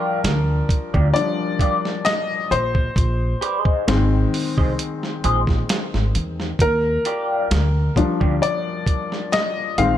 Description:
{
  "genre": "R&B, neo-soul",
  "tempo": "66 BPM",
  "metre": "4/4",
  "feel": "swing 54% on 16ths",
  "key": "Eb major",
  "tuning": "A4 = 439 Hz",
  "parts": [
    { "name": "electric guitar through a small old amp", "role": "second line", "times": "0.0-8.3 s", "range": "F4 to Eb5", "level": "-24 LUFS", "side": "equal", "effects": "wah, phaser" },
    { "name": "clear grand piano", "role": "accompaniment", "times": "0.0-10.0 s", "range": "Eb3 to F5", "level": "-22 LUFS", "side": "left 3 dB", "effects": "none" },
    { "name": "upright bass", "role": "bass", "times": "0.2-10.0 s", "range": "Ab1 to Fb2", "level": "-20 LUFS", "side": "equal", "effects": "none" },
    { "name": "dusty soul sampler-style drum kit", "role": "drums", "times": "0.2-10.0 s", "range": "hi-hat, kick drum, snare drum", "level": "-22 LUFS", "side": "right 1 dB", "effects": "none" }
  ],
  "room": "light reverb, digital ambience",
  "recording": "none",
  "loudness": "-18 LUFS",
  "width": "side -11 dB against mid",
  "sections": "0.0-10.0 A section",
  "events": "grand piano solo 0.0-10.0",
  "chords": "0.0 Ebmaj9; 2.5 Bb9sus4; 6.6 Ebmaj9"
}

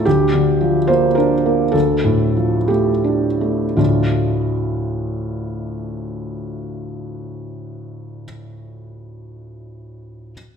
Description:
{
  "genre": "neoclassical minimalist piano",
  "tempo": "80-111 BPM",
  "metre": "3/4",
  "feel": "rubato",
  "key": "D minor",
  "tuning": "A4 = 440 Hz",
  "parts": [
    { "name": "felt-muted upright piano", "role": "solo", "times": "0.0-10.3 s", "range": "D2 to C5", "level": "-17 LUFS", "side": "equal", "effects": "none" }
  ],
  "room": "wet recital hall reverb, RT60 1.5 s",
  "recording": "recorded in a church or concert hall",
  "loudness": "-15 LUFS",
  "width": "side -7 dB against mid",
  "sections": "0.0-3.8 A section; 3.8-8.1 B section",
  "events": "slowing down 0.0-3.8",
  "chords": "0.1 Gm7/D; 1.7 Dm"
}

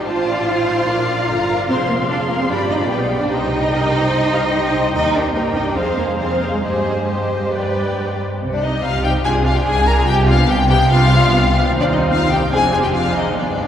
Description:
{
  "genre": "quick classical-period movement for string orchestra",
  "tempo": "146 BPM",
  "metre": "4/4",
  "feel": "rubato",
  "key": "C minor",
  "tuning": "A4 = 440 Hz",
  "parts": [
    { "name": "warm symphonic violin section", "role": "melody", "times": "0.0-13.7 s", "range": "G4 to Bb5", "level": "-21 LUFS", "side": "left 3 dB", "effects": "none" },
    { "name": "dark symphonic violin section", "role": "second line", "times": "0.0-13.7 s", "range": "D4 to C6", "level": "-22 LUFS", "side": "left 1 dB", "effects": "none" },
    { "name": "rich studio viola section", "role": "accompaniment", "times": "0.0-13.7 s", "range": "B3 to D5", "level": "-23 LUFS", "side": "right 1 dB", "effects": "none" },
    { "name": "warm symphonic double bass section", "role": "bass", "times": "0.0-13.7 s", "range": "F1 to G2", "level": "-21 LUFS", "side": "right 1 dB", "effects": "none" },
    { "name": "warm symphonic cello section", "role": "bass", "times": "0.1-13.7 s", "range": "Eb2 to F4", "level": "-20 LUFS", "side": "right 1 dB", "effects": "none" }
  ],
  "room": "wet cathedral reverb, RT60 6.9 s",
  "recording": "heard from further back in the room",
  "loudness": "-14 LUFS",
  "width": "side -9 dB against mid",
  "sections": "0.0-8.4 A section; 8.4-13.7 B section",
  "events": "none",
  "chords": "0.1 F7/A; 0.9 Bb; 1.7 Dm7b5/F; 2.5 G7; 3.3 Cm; 4.9 Eb; 5.8 Fm; 6.6 Cm/G; 7.5 G; 8.4 Cm; 9.2 Bb13/C; 10.1 Gadd11/C; 11.7 Cm/Eb; 12.5 Fm13"
}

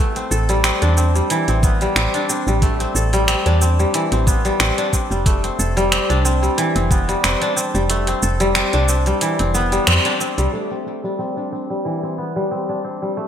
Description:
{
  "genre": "organic downtempo",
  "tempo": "91 BPM",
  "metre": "4/4",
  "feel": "swing 54% on 16ths",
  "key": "unclear",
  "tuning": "A4 = 437 Hz",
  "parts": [
    { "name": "kora", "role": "arpeggios", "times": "0.0-13.3 s", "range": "E3 to A4", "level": "-19 LUFS", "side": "left 1 dB", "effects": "low-pass filter, ping-pong delay" },
    { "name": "woody FM bass", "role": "bass", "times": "0.0-10.5 s", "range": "F1 to F2", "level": "-19 LUFS", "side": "equal", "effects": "none" },
    { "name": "afro-pop drum kit", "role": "drums", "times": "0.2-10.5 s", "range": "cabasa, finger snaps, hi-hat", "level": "-21 LUFS", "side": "right 1 dB", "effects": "low-pass filter on perc, low-pass filter on snare, low-pass filter on hats, low-pass filter on room, gated reverb" },
    { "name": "electronic kick drum", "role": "drums", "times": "1.6-7.0 s", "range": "none", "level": "-17 LUFS", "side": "equal", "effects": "none" }
  ],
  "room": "moderate lush hall reverb, RT60 1.7 s, digital ambience",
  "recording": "bright 1980s-style digital production",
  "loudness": "-16 LUFS",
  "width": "side -9 dB against mid",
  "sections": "0.0-10.5 A section; 10.5-13.3 B section",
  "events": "kick drops out 7.9-10.5; band accent 9.9-10.2; filter sweep on kora 10.5-13.3",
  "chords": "0.0 Fmaj7; 10.5 Em7"
}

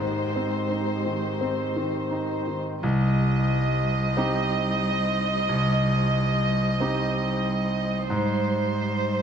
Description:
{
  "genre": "neoclassical piano and strings",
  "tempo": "84-93 BPM",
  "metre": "4/4",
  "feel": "rubato",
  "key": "C minor",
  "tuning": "A4 = 440 Hz",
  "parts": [
    { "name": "muted chamber violin section", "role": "melody", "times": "0.0-9.2 s", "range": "C5 to Eb5", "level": "-28 LUFS", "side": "right 2 dB", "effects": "none" },
    { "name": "muted cello", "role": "second line", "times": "0.0-9.2 s", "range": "G3 to Ab3", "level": "-31 LUFS", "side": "right 3 dB", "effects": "none" },
    { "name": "bright concert grand piano", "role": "accompaniment", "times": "0.0-9.2 s", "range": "C2 to G4", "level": "-25 LUFS", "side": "equal", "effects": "none" },
    { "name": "muted chamber string section", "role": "sustained chords", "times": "0.0-9.2 s", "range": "G3 to C5", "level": "-36 LUFS", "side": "left 3 dB", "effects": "none" }
  ],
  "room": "moderate concert hall reverb, RT60 2.0 s",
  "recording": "close, detailed microphones",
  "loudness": "-22 LUFS",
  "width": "side -7 dB against mid",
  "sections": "0.0-2.8 A section; 2.8-9.2 B section",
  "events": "none",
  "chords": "0.0 Abmaj7; 2.8 Cm; 8.1 Abmaj7"
}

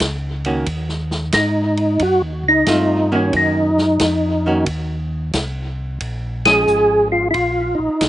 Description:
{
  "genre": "soul jazz organ trio",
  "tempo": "90 BPM",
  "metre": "4/4",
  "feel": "swing 67% on 8ths",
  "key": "unclear",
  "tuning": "A4 = 442 Hz",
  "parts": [
    { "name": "mellow tonewheel organ", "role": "bass", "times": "0.0-8.1 s", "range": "Ab1 to Ab2", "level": "-23 LUFS", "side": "equal", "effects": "slow rotary speaker" },
    { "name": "vintage drum kit", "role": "drums", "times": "0.0-8.1 s", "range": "hi-hat, kick drum, ride cymbal, snare drum", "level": "-24 LUFS", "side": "equal", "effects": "none" },
    { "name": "archtop guitar, miked and amplified", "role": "accompaniment", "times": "0.5-7.3 s", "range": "Eb3 to Gb4", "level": "-21 LUFS", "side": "right 2 dB", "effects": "slapback echo" },
    { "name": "percussive tonewheel organ", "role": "melody", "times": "1.3-8.1 s", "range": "Db4 to Ab4", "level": "-15 LUFS", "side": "equal", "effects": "slow rotary speaker, chorus vibrato, slapback echo" }
  ],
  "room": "little or no reverb",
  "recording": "recorded outdoors, with no room sound, nothing above 10.6 kHz",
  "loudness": "-15 LUFS",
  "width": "side -13 dB against mid",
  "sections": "0.0-8.1 A section",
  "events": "band accent 6.3-6.7",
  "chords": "0.0 Bbm; 0.7 Ebm7; 6.0 Bbm7"
}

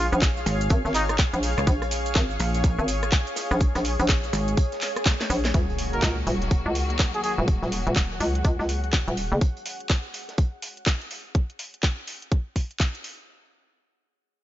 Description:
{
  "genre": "bass house",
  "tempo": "124 BPM",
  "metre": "4/4",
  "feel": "swing 61% on 16ths",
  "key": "Eb minor",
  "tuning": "A4 = 441 Hz",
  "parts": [
    { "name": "trumpet with plunger mute", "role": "melody", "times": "0.0-1.2, 7.1-7.3 s", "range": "Eb4 to Ab4", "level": "-29 LUFS", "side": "equal", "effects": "tape echo" },
    { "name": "hollow knocking FM bass", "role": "bass", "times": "0.0-9.4 s", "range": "Eb1 to Db2", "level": "-26 LUFS", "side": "equal", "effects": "sidechain pumping" },
    { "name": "granular cloud pad", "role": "texture", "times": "0.0-9.4 s", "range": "Ab4 to Gb5", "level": "-32 LUFS", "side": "equal", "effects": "built-in reverb, sidechain pumping" },
    { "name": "garage drum kit", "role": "drums", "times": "0.1-13.2 s", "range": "handclaps, hi-hat, rim click, shaker, snare drum", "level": "-29 LUFS", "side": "equal", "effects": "none" },
    { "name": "electronic kick drum", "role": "drums", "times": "0.2-12.9 s", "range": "none", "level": "-22 LUFS", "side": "equal", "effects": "none" },
    { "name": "vintage drum kit", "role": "drums", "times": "0.2-11.2 s", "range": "hi-hat, snare drum", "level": "-41 LUFS", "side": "right 1 dB", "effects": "none" },
    { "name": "pulsing pluck wobble bass", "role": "bass", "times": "0.5-4.6 s", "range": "Ab1 to Db2", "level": "-24 LUFS", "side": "equal", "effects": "chorus, tube saturation, sidechain pumping" },
    { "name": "rich symphonic string section", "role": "sustained chords", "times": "5.5-9.4 s", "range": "Eb3 to Gb4", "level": "-34 LUFS", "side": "left 2 dB", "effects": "sidechain pumping" },
    { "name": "impact", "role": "sound effects", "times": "5.6-7.5 s", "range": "none", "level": "-33 LUFS", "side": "equal", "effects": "none" },
    { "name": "clear horn section", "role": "stabs", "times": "5.9-6.1 s", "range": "Bb3 to Bb4", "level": "-33 LUFS", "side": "right 2 dB", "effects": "sidechain pumping, low-pass filter, tape echo" }
  ],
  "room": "light reverb, studio reverb",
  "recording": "nothing above 7.6 kHz",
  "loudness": "-22 LUFS",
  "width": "side -13 dB against mid",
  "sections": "0.0-5.5 A section; 5.5-13.3 B section",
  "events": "drop 0.0-5.5; drum fill 5.1-5.5; impact 5.5-7.5",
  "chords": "0.0 Bbm7; 5.5 Ebm"
}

